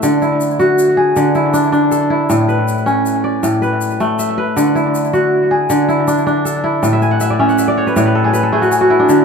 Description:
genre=west african traditional, West African string and xylophone music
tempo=106 BPM (dotted quarters)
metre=12/8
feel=straight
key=D lydian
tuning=A4 = 440 Hz
part: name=kora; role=arpeggios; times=0.0-9.2 s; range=A2 to G#5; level=-12 LUFS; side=equal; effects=tape echo
part: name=tube shaker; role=percussion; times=0.0-9.2 s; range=none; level=-28 LUFS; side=left 5 dB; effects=none
room=moderate recital hall reverb, RT60 1.5 s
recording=dark, warm production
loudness=-12 LUFS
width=side -5 dB against mid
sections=0.0-9.2 A section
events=kora fill 6.9-9.1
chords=0.0 D; 2.3 A; 4.6 D; 6.8 A

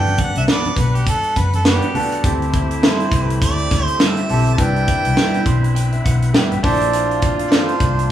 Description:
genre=lush 1970s-style soul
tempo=102 BPM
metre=4/4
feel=swing 58% on 16ths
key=unclear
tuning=A4 = 437 Hz
part: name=warm harmonica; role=melody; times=0.0-8.1 s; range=G4 to A5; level=-22 LUFS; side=right 1 dB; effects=none
part: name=warm concert grand piano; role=accompaniment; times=0.0-8.1 s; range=B3 to C6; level=-23 LUFS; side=right 1 dB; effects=none
part: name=bright tonewheel organ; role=sustained chords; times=0.0-8.1 s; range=D3 to F#5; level=-30 LUFS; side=equal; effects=fast rotary speaker
part: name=vintage muted fingered electric bass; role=bass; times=0.0-8.1 s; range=F#1 to D2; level=-19 LUFS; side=left 1 dB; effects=none
part: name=tight funk drum kit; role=drums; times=0.1-8.1 s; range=hi-hat, kick drum, snare drum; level=-18 LUFS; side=equal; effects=none
part: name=congas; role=percussion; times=0.1-2.1 s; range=none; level=-29 LUFS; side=right 2 dB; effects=none
part: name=electric guitar through a small old amp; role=riff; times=0.5-7.7 s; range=E3 to B4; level=-22 LUFS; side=right 2 dB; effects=none
part: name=mellow horn section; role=stabs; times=2.2-8.1 s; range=E3 to F4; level=-27 LUFS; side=right 2 dB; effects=none
room=moderate large studio reverb, RT60 1.0 s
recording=band playing live in one room, studio ambience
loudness=-14 LUFS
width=side -11 dB against mid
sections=0.0-2.2 A section; 2.2-8.1 B section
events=harmonica solo 0.0-2.2; grand piano fill 5.2-6.9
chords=0.0 Gmaj7; 2.2 D9sus4; 4.6 Cmaj7; 6.6 Bbmaj9#11

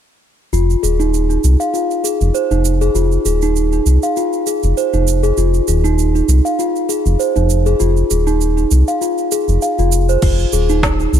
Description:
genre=organic downtempo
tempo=99 BPM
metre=4/4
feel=swing 54% on 16ths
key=F minor pentatonic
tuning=A4 = 440 Hz
part: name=steel tongue drum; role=arpeggios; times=0.5-11.1 s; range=Eb4 to F5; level=-16 LUFS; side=equal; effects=low-pass filter, digital delay
part: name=round analog bass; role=bass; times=0.5-11.2 s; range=Eb1 to C2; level=-14 LUFS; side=equal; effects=none
part: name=organic electronic drum kit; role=drums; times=0.5-11.2 s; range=crash cymbal, shaker, snare drum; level=-24 LUFS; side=right 7 dB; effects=none
part: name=electronic kick drum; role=drums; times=10.2-11.0 s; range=none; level=-18 LUFS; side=equal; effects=none
room=little or no reverb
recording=none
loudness=-13 LUFS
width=side -10 dB against mid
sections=0.5-10.2 A section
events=none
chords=0.5 Fm7

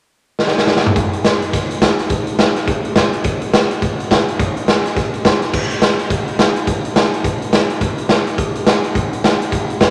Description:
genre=rock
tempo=210 BPM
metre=4/4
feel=swing 61% on 8ths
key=none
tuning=none
part: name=raw garage drum kit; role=drums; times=0.4-9.9 s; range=crash cymbal, hi-hat, kick drum, snare drum, toms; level=-16 LUFS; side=equal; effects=none
room=moderate large studio reverb, RT60 1.2 s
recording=none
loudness=-16 LUFS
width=mono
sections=1.0-5.5 A section; 5.5-9.9 B section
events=drum fill 0.4-1.0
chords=none

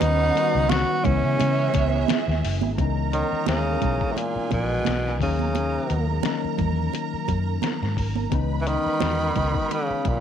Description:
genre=lush 1970s-style soul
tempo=87 BPM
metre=4/4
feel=swing 54% on 16ths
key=C# dorian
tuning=A4 = 437 Hz
part: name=clear tenor saxophone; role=melody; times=0.0-10.2 s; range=A2 to F#4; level=-24 LUFS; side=right 1 dB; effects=slapback echo
part: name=warm symphonic string section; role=second line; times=0.0-10.2 s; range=B3 to B5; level=-30 LUFS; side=right 12 dB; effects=none
part: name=tine electric piano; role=accompaniment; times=0.0-10.2 s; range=D#3 to F#4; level=-29 LUFS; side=left 14 dB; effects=analog chorus
part: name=vintage muted fingered electric bass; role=bass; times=0.0-10.2 s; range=F#1 to C#3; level=-25 LUFS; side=equal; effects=none
part: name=lo-fi sampler-style drum kit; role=drums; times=0.0-10.2 s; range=hi-hat, kick drum, snare drum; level=-29 LUFS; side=left 4 dB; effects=none
part: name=congas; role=percussion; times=0.0-10.2 s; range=none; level=-29 LUFS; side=right 14 dB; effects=none
part: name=celesta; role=texture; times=0.0-5.5 s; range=A#4 to C#5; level=-40 LUFS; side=right 16 dB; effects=none
room=light reverb, small room reverb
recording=1960s-style stereo with parts hard left and right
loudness=-21 LUFS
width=side -8 dB against mid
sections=0.0-2.8 A section; 2.8-10.2 B section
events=none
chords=0.0 D#7alt; 1.1 C#m7; 2.8 C#m9; 5.2 D#m7; 8.3 C#m9

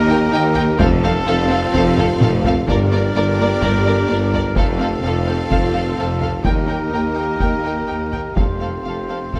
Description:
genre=cinematic, epic orchestral film score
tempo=127 BPM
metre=4/4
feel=straight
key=unclear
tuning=A4 = 440 Hz
part: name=mellow French horn section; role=sustained chords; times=0.0-9.4 s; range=A3 to G4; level=-28 LUFS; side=equal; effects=none
part: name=warm symphonic string section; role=sustained chords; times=0.0-9.4 s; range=Bb3 to F5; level=-28 LUFS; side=equal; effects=none
part: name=clear trumpet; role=stabs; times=0.0-9.4 s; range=A4 to C5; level=-28 LUFS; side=equal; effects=none
part: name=mellow tuba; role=bass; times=0.0-9.4 s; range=F1 to Eb2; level=-25 LUFS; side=equal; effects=none
part: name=rich symphonic cello section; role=bass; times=0.0-9.4 s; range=Eb2 to G2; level=-26 LUFS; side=equal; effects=none
part: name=warm studio double bass section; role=bass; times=0.0-9.4 s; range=F1 to Eb2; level=-27 LUFS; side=equal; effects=none
part: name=warm symphonic violin section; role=melody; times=0.1-9.4 s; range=D5 to G5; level=-29 LUFS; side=equal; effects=none
part: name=rich chamber violin section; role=second line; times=0.1-9.4 s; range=A4 to Bb4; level=-30 LUFS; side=equal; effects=none
part: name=warm symphonic viola section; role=accompaniment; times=0.1-9.4 s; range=Bb3 to Eb4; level=-31 LUFS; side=equal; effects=none
part: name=taiko ensemble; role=drums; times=0.6-9.4 s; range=none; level=-23 LUFS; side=equal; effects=none
room=moderate scoring stage reverb, RT60 1.6 s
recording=none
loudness=-18 LUFS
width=mono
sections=0.0-9.4 A section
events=drum fill 2.0-2.7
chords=0.0 Eb; 0.8 F; 2.7 Gm; 4.6 F; 6.5 Eb; 8.4 F

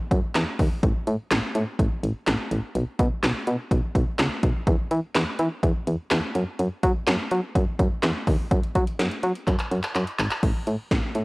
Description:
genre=synth-pop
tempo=125 BPM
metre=4/4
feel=straight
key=unclear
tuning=A4 = 436 Hz
part: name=solid FM bass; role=bass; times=0.1-11.2 s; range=G#1 to F#3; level=-24 LUFS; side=equal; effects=none
part: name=80s electronic pad drums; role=drums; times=0.1-11.2 s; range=crash cymbal, handclaps, hi-hat, kick drum, snare drum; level=-24 LUFS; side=equal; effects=none
room=light reverb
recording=worn, warbling old tape, cassette tape, warbly pitch drift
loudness=-22 LUFS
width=side -25 dB against mid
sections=0.0-8.5 A section; 8.5-10.4 B section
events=drum fill 9.5-10.4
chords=none

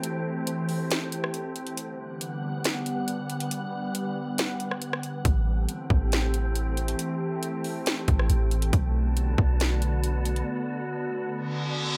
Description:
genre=hip hop, atmospheric cloud-rap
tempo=138 BPM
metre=4/4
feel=half-time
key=A dorian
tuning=A4 = 440 Hz
part: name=glassy FM pad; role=sustained chords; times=0.0-12.0 s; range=D3 to F#5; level=-33 LUFS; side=equal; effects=ensemble chorus, built-in reverb, sidechain pumping
part: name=trap drum kit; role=drums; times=0.0-10.5 s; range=hi-hat, kick drum, rim click, snare drum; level=-30 LUFS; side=equal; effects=none
part: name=wind-like tuned noise texture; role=texture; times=0.0-12.0 s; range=B3 to A5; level=-42 LUFS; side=equal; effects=built-in reverb
part: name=clean 808-style bass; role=bass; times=5.3-10.4 s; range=A1 to B1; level=-27 LUFS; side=equal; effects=none
part: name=reverse cymbal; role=sound effects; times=11.5-12.0 s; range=none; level=-32 LUFS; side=equal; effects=none
room=light reverb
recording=none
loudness=-28 LUFS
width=mono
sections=0.0-12.0 A section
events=break 0.0-5.3, 10.5-12.0; kick muted 4.4-5.3; reverse cymbal 11.5-12.0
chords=0.0 Am7; 1.8 Gmaj7; 5.3 Am7; 8.7 Bm7

